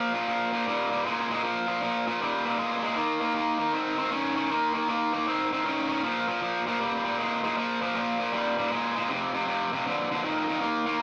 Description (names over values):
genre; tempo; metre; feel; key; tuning
blues; 157 BPM; 4/4; swing 64% on 8ths; unclear; A4 = 440 Hz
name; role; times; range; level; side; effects
overdriven electric guitar; solo; 0.0-11.0 s; F2 to Db4; -28 LUFS; equal; none
room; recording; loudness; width
moderate studio reverb, RT60 0.5 s; none; -28 LUFS; mono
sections
0.0-11.0 A section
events
none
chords
0.0 Bb5; 3.0 Eb5; 6.0 Bb5; 9.1 F5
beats
0.28 0.67 1.05 | 1.44 1.82 2.21 2.59 | 2.97 3.36 3.74 4.12 | 4.51 4.89 5.27 5.66 | 6.04 6.42 6.80 7.19 | 7.57 7.95 8.33 8.71 | 9.10 9.48 9.86 10.24 | 10.62 11.01